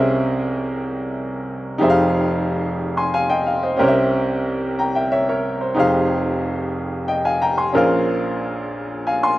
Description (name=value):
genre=gospel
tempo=61 BPM (dotted quarters)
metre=6/8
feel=straight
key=F minor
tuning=A4 = 440 Hz
part: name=clear baby grand piano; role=solo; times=0.0-9.4 s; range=F1 to C6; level=-17 LUFS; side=equal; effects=none
room=little or no reverb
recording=recorded outdoors, with no room sound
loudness=-18 LUFS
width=side -16 dB against mid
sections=0.0-9.4 A section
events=none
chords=0.0 C7b9b13; 1.8 Fm9; 3.8 C7b9; 5.8 Fm9; 7.7 Bbm9